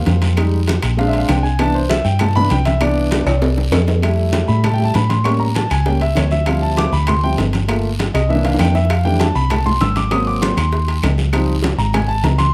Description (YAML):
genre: Afro-Cuban jazz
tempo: 197 BPM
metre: 4/4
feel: straight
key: unclear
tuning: A4 = 440 Hz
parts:
  - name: warm concert grand piano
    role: accompaniment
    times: 0.0-12.5 s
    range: E3 to E6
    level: -21 LUFS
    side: equal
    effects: none
  - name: hollow-body short-scale fingered electric bass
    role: bass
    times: 0.0-12.5 s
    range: G1 to A2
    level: -19 LUFS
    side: equal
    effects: none
  - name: bongos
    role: percussion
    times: 0.1-12.5 s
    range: none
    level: -29 LUFS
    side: equal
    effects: none
  - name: congas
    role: percussion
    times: 0.1-12.5 s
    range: none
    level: -26 LUFS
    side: equal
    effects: none
  - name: guiro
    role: percussion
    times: 0.1-12.5 s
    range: none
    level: -35 LUFS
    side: equal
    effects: none
  - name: timbales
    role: percussion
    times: 0.1-12.5 s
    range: none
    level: -28 LUFS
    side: equal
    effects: none
  - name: claves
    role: percussion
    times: 0.4-12.1 s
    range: none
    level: -34 LUFS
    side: equal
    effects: none
room: light reverb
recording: none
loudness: -16 LUFS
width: mono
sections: 0.0-4.0 A section; 4.0-12.5 A section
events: grand piano solo 0.0-12.5; drum fill 3.3-4.0, 8.1-8.9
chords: 0.4 Fm7; 1.0 Bb9; 1.6 Cmaj7; 4.0 Fmaj9; 5.3 A7b9; 6.5 Dm11; 7.7 Gm7; 8.3 C9; 8.9 Fmaj13; 10.1 Ab9; 11.3 Dbmaj9#11